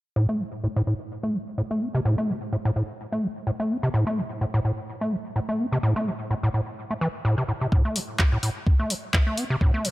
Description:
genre	acid house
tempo	127 BPM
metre	4/4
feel	swing 55% on 16ths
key	A minor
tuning	A4 = 440 Hz
part	acid bass, square	riff	0.2-9.9 s	A2 to C4	-24 LUFS	equal	overdrive, vintage 12-bit sampler grit, sidechain pumping, tape echo
part	electronic kick drum	drums	7.7-9.7 s	none	-20 LUFS	equal	none
part	punchy analog drum machine	drums	8.0-9.9 s	handclaps, hi-hat	-27 LUFS	equal	overdrive
room	light reverb, digital ambience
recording	none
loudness	-23 LUFS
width	side -18 dB against mid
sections	0.2-9.9 A section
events	filter sweep on acid bass 0.2-9.9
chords	none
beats	| 0.16 0.63 1.11 1.58 | 2.05 2.52 3.00 3.47 | 3.94 4.41 4.88 5.36 | 5.83 6.30 6.78 7.25 | 7.72 8.19 8.66 9.14 | 9.61

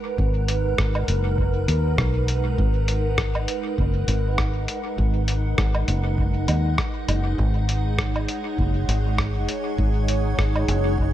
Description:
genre	ambient dub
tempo	100 BPM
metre	4/4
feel	swing 56% on 16ths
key	G# minor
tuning	A4 = 440 Hz
part	soft additive organ-like pad	sustained chords	0.0-11.1 s	G#3 to F#5	-27 LUFS	right 1 dB	ensemble chorus, built-in reverb
part	fingered electric bass	bass	0.2-11.1 s	F#1 to D#2	-22 LUFS	equal	tube saturation
part	electronic kick drum	drums	0.2-11.1 s	none	-27 LUFS	equal	none
part	lo-fi sampler-style drum kit	drums	0.5-10.8 s	hi-hat, rim click, woodblock	-28 LUFS	equal	dub echo
room	little or no reverb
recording	none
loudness	-20 LUFS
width	side -12 dB against mid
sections	0.0-11.1 A section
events	none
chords	0.0 G#m7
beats	| 0.18 0.78 1.38 1.98 | 2.58 3.18 3.78 4.38 | 4.98 5.58 6.18 6.78 | 7.38 7.98 8.58 9.18 | 9.78 10.38 10.98

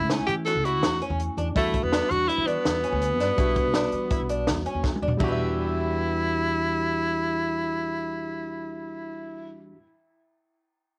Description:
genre	progressive instrumental, band music in an uneven meter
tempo	164 BPM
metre	5/4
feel	straight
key	E dorian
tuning	A4 = 440 Hz
part	breathy tenor saxophone	melody	0.0-9.6 s	A3 to A4	-29 LUFS	equal	cassette tape, analog delay
part	tine electric piano	accompaniment	0.0-9.8 s	G3 to F#4	-35 LUFS	equal	cassette tape
part	upright bass	bass	0.0-9.7 s	B1 to E3	-34 LUFS	equal	none
part	fingerpicked twelve-string acoustic guitar	arpeggios	0.1-9.9 s	C#4 to E5	-36 LUFS	equal	cassette tape
part	compact cocktail drum kit	drums	0.1-5.3 s	hi-hat, kick drum, ride cymbal, snare drum, toms	-30 LUFS	equal	cassette tape
room	light reverb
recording	home recording on cassette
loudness	-26 LUFS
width	mono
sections	0.0-5.2 A section; 5.2-8.9 B section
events	drum fill 4.8-5.2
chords	0.0 F#m7; 1.6 Em7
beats	0.10 0.47 0.83 1.19 | 1.56 1.92 2.29 2.65 3.02 | 3.38 3.75 4.11 4.47 4.84 | 5.21 5.57 5.93 6.30 6.67 | 7.03 7.40 7.76 8.13 8.49

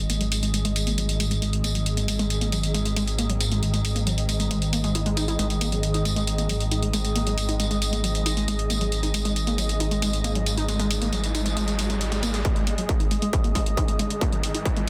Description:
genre	driving peak-time techno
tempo	136 BPM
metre	4/4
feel	straight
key	unclear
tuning	A4 = 440 Hz
part	gritty driven synth bass	bass	0.0-12.4 s	G#1	-29 LUFS	equal	sidechain pumping
part	swarming drone	drone	0.3-12.5 s	G#2 to D#3	-34 LUFS	equal	built-in reverb, sidechain pumping
part	sub drop and riser	sound effects	0.0-0.1, 10.3-14.9 s	none	-38 LUFS	equal	none
part	granular cloud pad	texture	0.0-14.9 s	G#3 to D#6	-34 LUFS	equal	built-in reverb, sidechain pumping
part	warbly dusty pluck	riff	0.1-14.8 s	F#3 to G#4	-32 LUFS	equal	chorus, sidechain pumping, delay
part	electronic hi-hat and tambourine	drums	0.1-14.9 s	none	-32 LUFS	equal	high-pass filter on hats, high-pass filter on perc, high-pass filter on snare, high-pass filter on toms, high-pass filter on room
part	electronic kick drum	drums	12.4-14.7 s	none	-26 LUFS	equal	distortion
room	moderate stone room reverb, RT60 1.2 s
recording	dense, heavily limited modern master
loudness	-24 LUFS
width	mono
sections	0.0-12.4 A section; 12.4-14.9 B section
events	filter sweep on synth arpeggio sound 0.0-12.4, 12.4-14.9; riser 10.3-12.4, 12.4-14.9; build-up 12.4-14.9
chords	0.0 G#5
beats	| 0.10 0.54 0.98 1.42 | 1.86 2.30 2.74 3.19 | 3.63 4.07 4.51 4.95 | 5.39 5.83 6.27 6.71 | 7.16 7.60 8.04 8.48 | 8.92 9.36 9.80 10.24 | 10.69 11.13 11.57 12.01 | 12.45 12.89 13.33 13.77 | 14.21 14.65

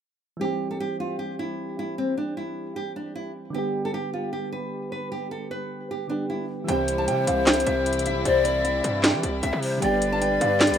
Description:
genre	hip hop, trap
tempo	153 BPM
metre	4/4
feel	half-time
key	C major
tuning	A4 = 445 Hz
part	nylon-string guitar	melody	0.4-10.8 s	C4 to A5	-29 LUFS	equal	tape echo
part	soft electric-piano-like synth keys	accompaniment	0.4-10.8 s	D3 to G4	-30 LUFS	right 1 dB	chorus
part	breathy large pan pipes	second line	6.7-10.8 s	C5 to E5	-25 LUFS	left 3 dB	tape echo
part	rich chamber string section	sustained chords	6.7-10.8 s	C3 to B4	-29 LUFS	left 2 dB	none
part	distorted 808-style bass	bass	6.7-10.8 s	G1 to E3	-30 LUFS	right 1 dB	distortion
part	trap drum kit	drums	6.7-10.8 s	handclaps, hi-hat, snare drum	-23 LUFS	right 1 dB	none
room	small room ambience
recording	rough home demo mix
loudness	-23 LUFS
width	side -9 dB against mid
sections	0.4-6.7 A section; 6.7-10.8 B section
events	none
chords	0.4 C; 3.5 G; 6.7 C; 9.8 G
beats	| 0.41 0.80 1.20 1.59 | 1.98 2.37 2.76 3.15 | 3.55 3.94 4.33 4.72 | 5.12 5.51 5.90 6.29 | 6.68 7.08 7.47 7.86 | 8.25 8.65 9.04 9.43 | 9.82 10.21 10.61

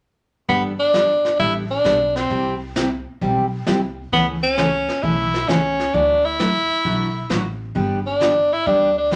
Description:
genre	country, western swing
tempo	132 BPM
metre	4/4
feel	swing 67% on 8ths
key	G major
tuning	A4 = 440 Hz
part	bright tenor saxophone	melody	0.5-9.2 s	B3 to E4	-20 LUFS	equal	none
part	picked steel-string acoustic guitar	accompaniment	0.5-9.2 s	C3 to A4	-25 LUFS	equal	none
part	upright bass	bass	0.5-9.2 s	G1 to D2	-32 LUFS	equal	none
part	vintage brush drum kit	drums	0.5-9.2 s	brushed snare drum, hi-hat, kick drum, snare drum	-31 LUFS	equal	none
room	wet studio reverb, RT60 0.5 s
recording	none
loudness	-19 LUFS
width	mono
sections	0.5-9.2 A section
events	none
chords	0.5 Gadd9; 2.3 C; 4.1 A/C#; 5.9 Dadd9; 7.8 G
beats	| 0.49 0.94 1.40 1.85 | 2.31 2.76 3.21 3.67 | 4.12 4.58 5.03 5.48 | 5.94 6.39 6.85 7.30 | 7.75 8.21 8.66 9.12

